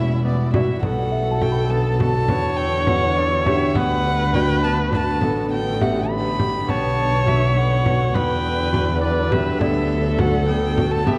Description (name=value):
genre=contemporary instrumental, chamber music in an uneven meter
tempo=205 BPM (eighths)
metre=5/8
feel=straight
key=E dorian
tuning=A4 = 440 Hz
part: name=warm violin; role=melody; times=0.0-11.2 s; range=D5 to B5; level=-29 LUFS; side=equal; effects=none
part: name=warm viola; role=second line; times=0.0-11.2 s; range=E4 to C#5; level=-26 LUFS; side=equal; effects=none
part: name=shimmering ambient pad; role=sustained chords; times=0.0-11.2 s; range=D3 to A4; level=-30 LUFS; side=equal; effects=chorus, built-in reverb
part: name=concert harp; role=arpeggios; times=0.0-11.2 s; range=A3 to G4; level=-29 LUFS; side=equal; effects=none
part: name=warm double bass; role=bass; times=0.0-11.2 s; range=E1 to E2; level=-24 LUFS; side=equal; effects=none
part: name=frame drum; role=percussion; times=0.2-11.2 s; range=none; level=-28 LUFS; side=equal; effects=none
part: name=small celesta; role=texture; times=0.6-6.9, 9.6-11.0 s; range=D5 to B5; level=-35 LUFS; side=equal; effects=none
room=wet concert hall reverb, RT60 1.9 s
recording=worn, warbling old tape, cassette tape, warbly pitch drift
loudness=-20 LUFS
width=mono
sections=0.8-11.2 A section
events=none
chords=0.0 Emadd9; 0.8 Bm7; 2.3 Em9; 3.8 D6; 5.2 A9sus4; 6.7 Bm7; 8.1 Em9; 9.6 D6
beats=0.24 0.54 | 0.83 1.12 1.41 1.71 2.00 | 2.29 2.58 2.88 3.17 3.46 | 3.76 4.05 4.34 4.63 4.93 | 5.22 5.51 5.80 6.10 6.39 | 6.68 6.97 7.27 7.56 7.85 | 8.14 8.44 8.73 9.02 9.31 | 9.60 9.90 10.19 10.48 10.77 | 11.07